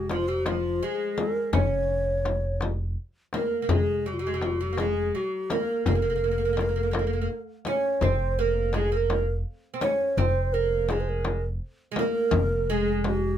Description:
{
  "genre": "Persian modal ensemble",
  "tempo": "56 BPM (dotted quarters)",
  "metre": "6/8",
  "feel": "straight",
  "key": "F dastgah shur",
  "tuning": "A4 = 440 Hz",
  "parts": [
    { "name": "breathy mellow low ney", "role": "melody", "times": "0.0-13.4 s", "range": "F4 to Db5", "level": "-27 LUFS", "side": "equal", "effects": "none" },
    { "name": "oud", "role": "second line", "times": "0.0-13.4 s", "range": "F3 to Db4", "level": "-31 LUFS", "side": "right 4 dB", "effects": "none" },
    { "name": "upright bass", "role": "bass", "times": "0.0-13.4 s", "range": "F1", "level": "-29 LUFS", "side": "equal", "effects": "none" },
    { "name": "frame drum", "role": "percussion", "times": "0.1-13.2 s", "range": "none", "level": "-31 LUFS", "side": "left 4 dB", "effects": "none" },
    { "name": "tombak", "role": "percussion", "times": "0.1-13.2 s", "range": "none", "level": "-28 LUFS", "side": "left 2 dB", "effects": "none" }
  ],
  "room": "little or no reverb",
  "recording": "close, detailed microphones",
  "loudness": "-24 LUFS",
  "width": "side -10 dB against mid",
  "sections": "0.0-13.4 A section",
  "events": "none",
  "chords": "none"
}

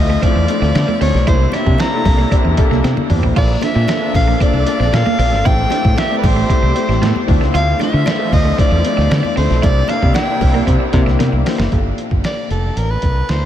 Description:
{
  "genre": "polished 1980s jazz-funk pop",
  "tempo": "115 BPM",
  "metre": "4/4",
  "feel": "straight",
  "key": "G dorian",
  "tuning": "A4 = 436 Hz",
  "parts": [
    { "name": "bright soprano saxophone", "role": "melody", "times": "0.0-13.5 s", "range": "A4 to Bb5", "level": "-20 LUFS", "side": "equal", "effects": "tape echo" },
    { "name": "warm concert grand piano", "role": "accompaniment", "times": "0.0-13.5 s", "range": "Bb2 to D5", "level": "-21 LUFS", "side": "left 4 dB", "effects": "analog chorus" },
    { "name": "warm symphonic string section", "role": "sustained chords", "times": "0.0-11.7 s", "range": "C3 to A4", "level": "-26 LUFS", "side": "equal", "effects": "none" },
    { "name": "modern bright fingered electric bass", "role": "bass", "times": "0.0-13.5 s", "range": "F1 to D3", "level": "-16 LUFS", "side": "equal", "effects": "none" },
    { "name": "clean electric guitar", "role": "riff", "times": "0.1-11.7 s", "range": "A3 to F4", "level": "-24 LUFS", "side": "right 6 dB", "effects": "analog chorus" },
    { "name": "dusty soul sampler-style drum kit", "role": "drums", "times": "0.2-13.4 s", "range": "crash cymbal, hi-hat, kick drum, snare drum, toms", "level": "-18 LUFS", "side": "equal", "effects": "none" },
    { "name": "congas", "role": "percussion", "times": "0.5-11.5 s", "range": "none", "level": "-28 LUFS", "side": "left 6 dB", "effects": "none" }
  ],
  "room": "moderate huge ambient reverb, RT60 7.7 s",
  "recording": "dreamy mix soaked in reverb",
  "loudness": "-12 LUFS",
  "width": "side -11 dB against mid",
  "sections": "0.0-11.7 A section; 11.7-13.5 B section",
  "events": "drum fill 2.8-3.4, 11.2-11.7",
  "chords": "0.0 Dm7; 1.3 C9; 3.4 Bbmaj7; 5.5 Am7; 7.3 Dm7; 9.6 C9; 11.7 Gm9"
}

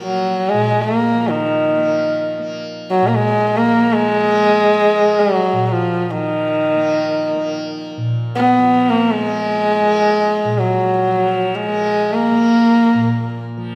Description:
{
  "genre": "indian classical, Hindustani",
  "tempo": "free time",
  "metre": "none",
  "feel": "none",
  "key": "Bb raga bhairavi",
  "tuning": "A4 = 440 Hz",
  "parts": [
    { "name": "warm sarangi", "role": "melody", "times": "0.0-13.4 s", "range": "Eb3 to Cb4+20c", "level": "-17 LUFS", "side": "equal", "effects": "none" },
    { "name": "tanpura", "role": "drone", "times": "0.0-13.8 s", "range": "Bb2 to Bb3", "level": "-27 LUFS", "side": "equal", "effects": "none" }
  ],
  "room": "wet recital hall reverb, RT60 1.3 s",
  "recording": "none",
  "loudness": "-16 LUFS",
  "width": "mono",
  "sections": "0.0-13.8 A section",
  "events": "none",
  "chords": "none"
}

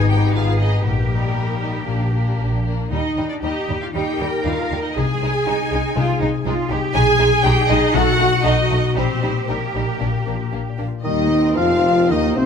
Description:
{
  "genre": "classical, dramatic, fast romantic movement for symphony orchestra",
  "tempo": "118 BPM",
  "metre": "4/4",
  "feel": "uneven beats, rubato",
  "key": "Eb major",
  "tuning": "A4 = 438 Hz",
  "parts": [
    { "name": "rich symphonic violin section", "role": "melody", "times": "0.0-12.5 s", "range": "Bb4 to Ab5", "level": "-24 LUFS", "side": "equal", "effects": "none" },
    { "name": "warm symphonic violin section", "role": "second line", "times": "0.0-12.5 s", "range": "G3 to F5", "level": "-28 LUFS", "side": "left 2 dB", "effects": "none" },
    { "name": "warm symphonic viola section", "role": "accompaniment", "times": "0.0-12.5 s", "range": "Bb3 to Ab4", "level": "-24 LUFS", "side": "right 2 dB", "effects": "none" },
    { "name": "concert harp", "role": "arpeggios", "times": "0.0-12.5 s", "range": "Ab2 to G5", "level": "-23 LUFS", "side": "left 6 dB", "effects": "none" },
    { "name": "dark studio double bass section", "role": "bass", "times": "0.0-12.5 s", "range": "Ab1 to F2", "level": "-23 LUFS", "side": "right 2 dB", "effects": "none" },
    { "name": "rich symphonic cello section", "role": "bass", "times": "0.0-12.5 s", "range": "G3 to Bb4", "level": "-26 LUFS", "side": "right 2 dB", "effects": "none" },
    { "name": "flute section", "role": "second line", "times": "11.0-12.5 s", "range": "C5 to F5", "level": "-25 LUFS", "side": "left 10 dB", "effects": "none" },
    { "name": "warm oboe", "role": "second line", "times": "11.0-12.5 s", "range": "C5 to F5", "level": "-28 LUFS", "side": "right 2 dB", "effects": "none" },
    { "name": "warm bassoon", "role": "accompaniment", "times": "11.0-12.5 s", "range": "C3 to F3", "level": "-25 LUFS", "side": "right 2 dB", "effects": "none" },
    { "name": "warm tuba", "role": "bass", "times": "11.0-12.5 s", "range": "F1 to Eb2", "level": "-24 LUFS", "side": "right 5 dB", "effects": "none" },
    { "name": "mellow clarinet", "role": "second line", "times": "11.1-12.5 s", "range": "none", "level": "barely audible", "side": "none", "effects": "none" },
    { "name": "mellow French horn section", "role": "sustained chords", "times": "11.1-12.5 s", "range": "C4 to F4", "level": "-18 LUFS", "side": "left 4 dB", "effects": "none" }
  ],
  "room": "wet recital hall reverb, RT60 1.7 s",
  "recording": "none",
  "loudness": "-16 LUFS",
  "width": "side -7 dB against mid",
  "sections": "0.0-11.1 A section; 11.1-12.5 B section",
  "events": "none",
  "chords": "0.0 Abm; 0.9 Eb/Bb; 1.9 Bb; 2.9 Eb; 5.0 Ab/C; 6.9 Abm/Cb; 7.9 B7; 9.0 Eb/Bb; 10.0 Bb; 11.1 Eb"
}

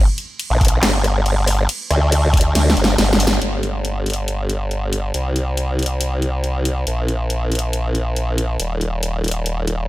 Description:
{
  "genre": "heavy wobble dubstep",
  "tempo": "139 BPM",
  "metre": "4/4",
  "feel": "half-time",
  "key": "G minor",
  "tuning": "A4 = 440 Hz",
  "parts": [
    { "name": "formant-sweep wobble bass", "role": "bass", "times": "0.0-9.9 s", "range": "Eb1 to D2", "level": "-18 LUFS", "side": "equal", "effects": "chorus, overdrive" },
    { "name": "dubstep drum kit", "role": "drums", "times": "0.2-9.8 s", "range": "crash cymbal, handclaps, hi-hat, rim click, snare drum", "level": "-21 LUFS", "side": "equal", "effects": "studio reverb" },
    { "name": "electronic kick drum", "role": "drums", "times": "0.6-2.4 s", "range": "none", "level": "-14 LUFS", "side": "equal", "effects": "studio reverb" }
  ],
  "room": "digital ambience",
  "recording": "none",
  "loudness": "-16 LUFS",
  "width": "side -17 dB against mid",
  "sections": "0.0-3.4 A section; 3.4-9.9 B section",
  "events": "drop 0.0-3.4; kick drops out 2.6-3.4; drum fill 2.6-3.4; band accent 3.3",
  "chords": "none"
}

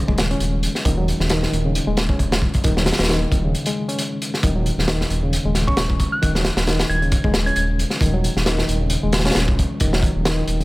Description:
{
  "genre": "breakbeat, breaks",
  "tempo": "134 BPM",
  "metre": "4/4",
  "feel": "swing 56% on 16ths",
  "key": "unclear",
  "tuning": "A4 = 441 Hz",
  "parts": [
    { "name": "barky reed electric piano", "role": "riff", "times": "0.0-10.6 s", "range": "Db3 to Db4", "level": "-23 LUFS", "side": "left 1 dB", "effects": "overdrive, fast tremolo, vintage 12-bit sampler grit" },
    { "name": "dark detuned saw bass", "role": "bass", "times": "0.1-10.6 s", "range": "Eb1", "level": "-22 LUFS", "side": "equal", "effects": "tube saturation" },
    { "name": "crunchy breakbeat drum kit", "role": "drums", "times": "0.1-10.6 s", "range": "hi-hat, kick drum, snare drum", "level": "-20 LUFS", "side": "equal", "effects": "none" },
    { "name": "glassy synth bell", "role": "melody", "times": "5.7-7.6 s", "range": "Db6 to Ab6", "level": "-26 LUFS", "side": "right 1 dB", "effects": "chorus, AM radio sound, dub echo" }
  ],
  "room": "small room reverb",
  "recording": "none",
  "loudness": "-17 LUFS",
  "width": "side -20 dB against mid",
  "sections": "0.0-10.6 A section",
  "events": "break 3.5-4.4",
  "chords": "0.0 Ebm7"
}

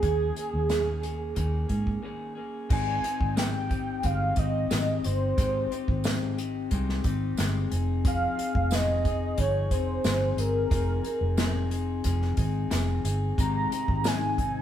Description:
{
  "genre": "indie pop, bedroom pop",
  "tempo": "90 BPM",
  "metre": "4/4",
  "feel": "straight",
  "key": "Ab major",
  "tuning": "A4 = 440 Hz",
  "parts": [
    { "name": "warm velvety synth lead", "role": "melody", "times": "0.0-14.6 s", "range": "Ab4 to Bb5", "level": "-29 LUFS", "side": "right 1 dB", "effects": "chorus" },
    { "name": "electric guitar through a small old amp", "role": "accompaniment", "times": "0.0-14.6 s", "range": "Eb3 to Ab4", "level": "-32 LUFS", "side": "left 6 dB", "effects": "warbly pitch drift" },
    { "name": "vintage muted fingered electric bass", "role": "bass", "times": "0.0-14.6 s", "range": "F1 to Ab2", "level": "-29 LUFS", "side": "right 1 dB", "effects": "none" },
    { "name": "unplugged drum kit", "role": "drums", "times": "0.0-14.5 s", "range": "crash cymbal, hi-hat, kick drum, snare drum", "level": "-29 LUFS", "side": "equal", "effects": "none" },
    { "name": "tambourine", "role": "percussion", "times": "0.7-14.2 s", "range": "none", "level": "-44 LUFS", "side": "right 4 dB", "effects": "none" },
    { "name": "string machine, cellos", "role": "sustained chords", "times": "13.4-14.6 s", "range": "C3 to Eb4", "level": "-37 LUFS", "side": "left 2 dB", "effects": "phaser, ensemble chorus" }
  ],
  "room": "light reverb",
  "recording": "band playing live in one room",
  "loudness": "-24 LUFS",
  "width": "side -10 dB against mid",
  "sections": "0.0-2.7 A section; 2.7-14.6 B section",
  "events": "break 2.0-2.7",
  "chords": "0.0 Eb7sus4; 2.7 Abmaj7; 7.7 Fm7; 13.4 Abmaj7"
}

